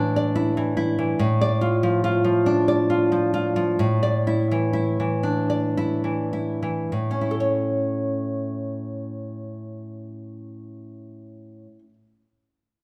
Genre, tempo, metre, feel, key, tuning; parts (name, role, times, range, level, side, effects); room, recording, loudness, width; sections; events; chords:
romantic piece for solo classical guitar; 50-74 BPM; 3/4; rubato; A major; A4 = 440 Hz
nylon-string guitar; solo; 0.0-11.9 s; A2 to D5; -24 LUFS; equal
wet recital hall reverb, RT60 1.4 s; recorded in a church or concert hall; -23 LUFS; mono
0.0-6.9 A section; 6.9-10.2 B section
slowing down 0.0-6.9
0.0 Asus4; 1.2 Dm/A; 3.8 Asus4; 6.9 A